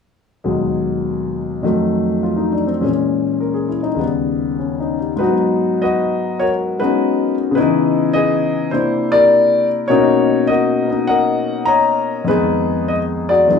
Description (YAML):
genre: solo jazz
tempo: 102 BPM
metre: 4/4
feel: swing 69% on 8ths, rubato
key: G# minor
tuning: A4 = 440 Hz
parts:
  - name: warm concert grand piano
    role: solo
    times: 0.4-13.6 s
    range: D#2 to A#5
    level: -14 LUFS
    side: left 3 dB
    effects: none
room: wet studio reverb, RT60 0.6 s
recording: heard from further back in the room, small room reverb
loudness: -14 LUFS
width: side -6 dB against mid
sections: 0.4-5.2 A section; 5.2-13.6 B section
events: none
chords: 0.4 G#m7/D#; 1.6 F7b9; 2.8 A#m7b5; 4.0 D#7b13; 5.2 G#m9; 7.6 C#m9; 8.7 C9; 9.9 Bmaj9; 12.3 Fm7b5